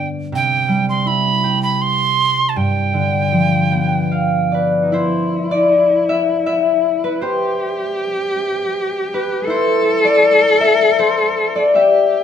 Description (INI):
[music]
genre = celtic folk, Celtic slow air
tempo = 80 BPM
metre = 3/4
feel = rubato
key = G mixolydian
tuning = A4 = 440 Hz
[part]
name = wooden whistle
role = melody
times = 0.0-4.5 s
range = G5 to C6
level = -18 LUFS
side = right 5 dB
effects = none
[part]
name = concert harp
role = accompaniment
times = 0.0-12.2 s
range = G2 to G5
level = -16 LUFS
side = left 2 dB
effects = none
[part]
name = dark cello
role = second line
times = 4.8-12.2 s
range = Eb4 to A4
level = -17 LUFS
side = equal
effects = none
[sound]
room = moderate stone room reverb, RT60 1.0 s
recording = band playing live in one room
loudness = -14 LUFS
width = side -8 dB against mid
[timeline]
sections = 0.0-4.9 A section; 4.9-12.2 B section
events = harp fill 3.3-4.9; harp solo 4.9-12.2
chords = 0.3 C; 2.6 G7; 4.9 N.C.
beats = | 0.33 1.07 1.81 | 2.56 3.32 4.12 | 4.91 5.69 6.47 | 7.22 7.97 8.72 | 9.47 10.22 10.98 | 11.75